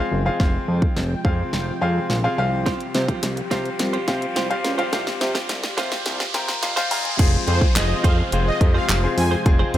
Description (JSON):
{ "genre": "dance-pop", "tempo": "106 BPM", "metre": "4/4", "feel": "straight", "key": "F minor", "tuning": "A4 = 440 Hz", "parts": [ { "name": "clear concert grand piano", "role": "accompaniment", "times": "0.0-9.8 s", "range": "C4 to Bb5", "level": "-26 LUFS", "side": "left 2 dB", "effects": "sidechain pumping" }, { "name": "warm analog pad", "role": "sustained chords", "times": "0.0-9.8 s", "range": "C3 to G5", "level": "-31 LUFS", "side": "equal", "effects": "chorus, sidechain pumping" }, { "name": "riser and downlifter", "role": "sound effects", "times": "1.1-9.8 s", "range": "none", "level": "-31 LUFS", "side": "equal", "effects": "none" }, { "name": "fat analog bass", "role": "bass", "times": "0.1-9.8 s", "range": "F1 to C3", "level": "-23 LUFS", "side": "equal", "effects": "sidechain pumping" }, { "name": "pop drum kit", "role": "drums", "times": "0.4-9.8 s", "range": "crash cymbal, handclaps, hi-hat, kick drum, snare drum", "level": "-22 LUFS", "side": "equal", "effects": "none" }, { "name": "direct-recorded clean electric guitar", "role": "riff", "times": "2.7-9.8 s", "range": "C4 to C5", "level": "-30 LUFS", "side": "right 6 dB", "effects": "wide subtle chorus" }, { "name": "soft supersaw", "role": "melody", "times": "7.5-9.8 s", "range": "C5 to Ab5", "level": "-26 LUFS", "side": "equal", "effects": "sidechain pumping, dub echo" } ], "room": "digital ambience", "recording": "high-pass filter", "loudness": "-18 LUFS", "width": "side -12 dB against mid", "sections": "0.0-7.2 A section; 7.2-9.8 B section", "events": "build-up 0.0-7.2; drum fill 0.0-7.2; filter sweep 0.0-7.2; riser 1.1-7.2; grand piano fill 6.3-7.2; drop 7.2-9.8", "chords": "0.0 Fm; 2.4 Csus4; 6.9 Fm" }